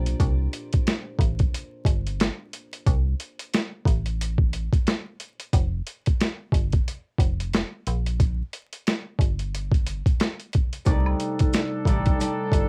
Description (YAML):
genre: hip hop, boom-bap hip-hop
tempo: 90 BPM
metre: 4/4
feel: swing 60% on 16ths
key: C dorian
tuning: A4 = 442 Hz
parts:
  - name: concert harp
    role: accompaniment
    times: 0.0-2.4, 10.8-12.7 s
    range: Bb2 to D5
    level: -32 LUFS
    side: equal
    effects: cassette tape, high-pass filter, low-pass filter
  - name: metallic FM bass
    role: bass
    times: 0.0-12.7 s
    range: F1 to C2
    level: -28 LUFS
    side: equal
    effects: none
  - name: boom bap sampler-style drum kit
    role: drums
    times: 0.1-12.7 s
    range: hi-hat, kick drum, snare drum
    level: -24 LUFS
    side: equal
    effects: cassette tape
  - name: dark trumpet section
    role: stabs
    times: 10.9-12.7 s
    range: D4 to A4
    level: -36 LUFS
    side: equal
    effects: high-pass filter, low-pass filter, cassette tape, tape echo
  - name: maracas and woodblock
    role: percussion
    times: 10.9-12.7 s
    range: none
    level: -43 LUFS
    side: equal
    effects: none
room: little or no reverb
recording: home recording on cassette, vinyl crackle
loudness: -25 LUFS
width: mono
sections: 0.2-12.7 A section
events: none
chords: 0.2 C5; 5.5 Fsus2; 7.9 Gm; 10.9 Cm69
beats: | 0.20 0.86 1.53 2.20 | 2.87 3.53 4.20 4.87 | 5.53 6.20 6.87 7.53 | 8.20 8.87 9.53 10.20 | 10.87 11.53 12.20